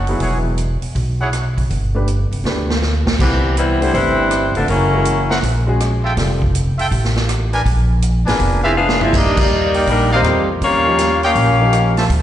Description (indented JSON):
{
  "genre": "jazz, big band swing",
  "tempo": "162 BPM",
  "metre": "4/4",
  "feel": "swing 66% on 8ths",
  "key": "unclear",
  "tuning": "A4 = 440 Hz",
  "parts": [
    { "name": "clear saxophone section", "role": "melody", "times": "0.0-0.1, 3.2-5.4, 8.6-12.0 s", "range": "E3 to F5", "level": "-16 LUFS", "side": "left 3 dB", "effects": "slapback echo" },
    { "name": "mellow trumpet section", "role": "stabs", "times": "0.0-1.3, 5.3-12.1 s", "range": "D4 to A5", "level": "-23 LUFS", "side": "right 1 dB", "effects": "slapback echo" },
    { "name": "upright bass", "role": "bass", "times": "0.0-12.2 s", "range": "E1 to E2", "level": "-18 LUFS", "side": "equal", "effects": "none" },
    { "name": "clear grand piano", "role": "accompaniment", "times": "0.1-12.1 s", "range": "F3 to B4", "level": "-24 LUFS", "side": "equal", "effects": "slapback echo" },
    { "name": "swinging big-band drum kit", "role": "drums", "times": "0.1-12.2 s", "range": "crash cymbal, hi-hat, kick drum, rim click, snare drum, toms", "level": "-22 LUFS", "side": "right 1 dB", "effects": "none" },
    { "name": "bright trombone section", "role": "second line", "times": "3.2-5.4, 8.6-12.0 s", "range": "C3 to F4", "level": "-22 LUFS", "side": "right 5 dB", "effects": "slapback echo" }
  ],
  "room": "light reverb, small room ambience",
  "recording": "live gig heard through the venue's PA, recital hall reverb, nothing above 10.7 kHz",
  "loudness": "-14 LUFS",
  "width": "side -11 dB against mid",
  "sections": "0.0-3.2 A section; 3.2-12.2 B section",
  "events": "drum fill 2.5-3.2, 8.8-9.1; band accent 9.3",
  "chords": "0.2 E69; 1.7 G; 3.2 Cmaj7; 4.7 F#7; 6.2 Fadd9; 7.7 Bb7b9; 9.1 Ebmaj7; 10.6 Eb9",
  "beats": "| 0.21 0.59 0.96 1.33 | 1.71 2.08 2.45 2.82 | 3.19 3.57 3.94 4.31 | 4.68 5.05 5.43 5.80 | 6.17 6.54 6.91 7.28 | 7.65 8.02 8.39 8.76 | 9.13 9.51 9.88 10.24 | 10.62 10.98 11.36 11.72 | 12.10"
}